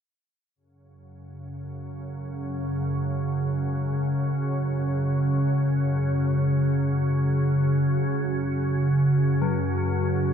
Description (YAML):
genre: ambient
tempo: free time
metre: none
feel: none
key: unclear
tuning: A4 = 440 Hz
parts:
  - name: deep dark ambient pad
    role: sustained chords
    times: 2.6-10.3 s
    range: F#2 to C#5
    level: -34 LUFS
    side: equal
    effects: chorus, built-in reverb
  - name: organ-like drone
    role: drone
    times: 1.3-10.3 s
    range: F#2 to C#3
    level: -23 LUFS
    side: equal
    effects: ensemble chorus, built-in reverb
  - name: bronze singing bowl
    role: arpeggios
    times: 9.4-10.3 s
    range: F#3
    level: -29 LUFS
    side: left 10 dB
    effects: none
room: moderate huge ambient reverb, RT60 7.9 s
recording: none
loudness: -22 LUFS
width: side -8 dB against mid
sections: 0.5-10.3 A section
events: fade-in on ambient pad 0.5-10.3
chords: 0.5 F#sus2; 9.4 N.C.